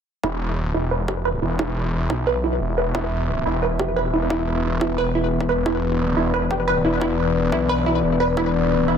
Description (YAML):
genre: dark technical drum and bass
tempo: 177 BPM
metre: 4/4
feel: straight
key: unclear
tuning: A4 = 439 Hz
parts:
  - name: dark analog pad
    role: sustained chords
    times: 0.2-9.0 s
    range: E3 to E5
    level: -24 LUFS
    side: left 2 dB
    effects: lush chorus, sidechain pumping
  - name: wide unison pluck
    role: arpeggios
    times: 0.2-9.0 s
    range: E4 to B4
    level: -23 LUFS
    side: right 2 dB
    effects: lush chorus, sidechain pumping, ping-pong delay
  - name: snarling distorted saw bass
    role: bass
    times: 0.2-9.0 s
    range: E1 to B1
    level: -24 LUFS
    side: equal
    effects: distortion, tube saturation, sidechain pumping
  - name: electronic kick drum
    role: drums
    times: 0.2-8.4 s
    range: none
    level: -29 LUFS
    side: equal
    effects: high-pass filter on kick, high-pass filter on room
room: moderate plate reverb, RT60 1.0 s, digital ambience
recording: dreamy mix soaked in reverb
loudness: -19 LUFS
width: side -7 dB against mid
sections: 0.2-9.0 A section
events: filter sweep on synth arpeggio sound 0.2-9.0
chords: 0.2 E5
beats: | 0.23 0.57 0.91 1.25 | 1.59 1.93 2.27 2.61 | 2.95 3.29 3.62 3.96 | 4.30 4.64 4.98 5.32 | 5.66 6.00 6.34 6.68 | 7.01 7.35 7.69 8.03 | 8.37 8.71